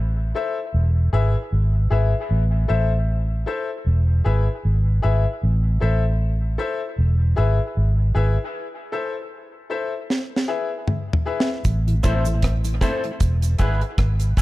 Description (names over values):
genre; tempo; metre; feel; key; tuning
dub reggae; 77 BPM; 4/4; swing 56% on 16ths; A harmonic minor; A4 = 440 Hz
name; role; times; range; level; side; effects
vintage muted fingered electric bass; bass; 0.0-14.4 s; E1 to A1; -18 LUFS; equal; none
bright baby grand piano; stabs; 0.3-14.4 s; E4 to E5; -27 LUFS; left 5 dB; high-pass filter, dub echo
deep reggae drum kit; drums; 10.1-14.4 s; hi-hat, kick drum, rim click, snare drum, toms; -22 LUFS; equal; none
cabasa; percussion; 11.6-14.4 s; none; -39 LUFS; right 10 dB; high-pass filter on perc
mellow tonewheel organ; accompaniment; 11.9-14.4 s; E2 to E4; -33 LUFS; left 1 dB; slow rotary speaker, high-pass filter, dub echo
electric guitar through a small old amp; accompaniment; 12.0-14.4 s; B3 to C5; -31 LUFS; right 1 dB; high-pass filter, dub echo
room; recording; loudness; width
small room reverb; dark, warm production; -19 LUFS; side -18 dB against mid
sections
0.0-11.6 A section; 11.6-14.4 B section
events
break 0.0-11.6; drum fill 10.1-11.6; filter sweep 11.6-14.4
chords
0.0 Am; 0.7 E; 2.3 Am; 3.9 E; 5.4 Am; 7.0 E; 8.5 Am; 10.1 E; 11.6 Am; 13.2 E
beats
0.74 1.52 | 2.30 3.08 3.86 4.64 | 5.42 6.20 6.98 7.76 | 8.54 9.31 10.09 10.87 | 11.65 12.43 13.21 13.98